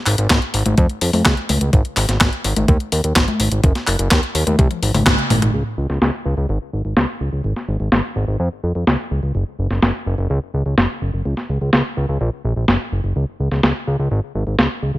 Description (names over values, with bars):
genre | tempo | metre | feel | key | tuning
italo disco | 126 BPM | 4/4 | straight | Db major | A4 = 440 Hz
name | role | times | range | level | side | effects
fat analog bass | bass | 0.1-15.0 s | Gb1 to F2 | -19 LUFS | equal | none
clean 12-bit digital drum machine | drums | 0.1-14.7 s | congas, handclaps, hi-hat, snare drum, toms | -18 LUFS | equal | overdrive, low-pass filter on hats, low-pass filter on snare, low-pass filter on perc, low-pass filter on toms
electronic kick drum | drums | 0.3-5.2 s | none | -16 LUFS | equal | overdrive
room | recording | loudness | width
light reverb | none | -16 LUFS | side -17 dB against mid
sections
0.0-5.5 A section; 5.5-15.0 B section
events
drum fill 4.6-5.5; band accent 5.1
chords
none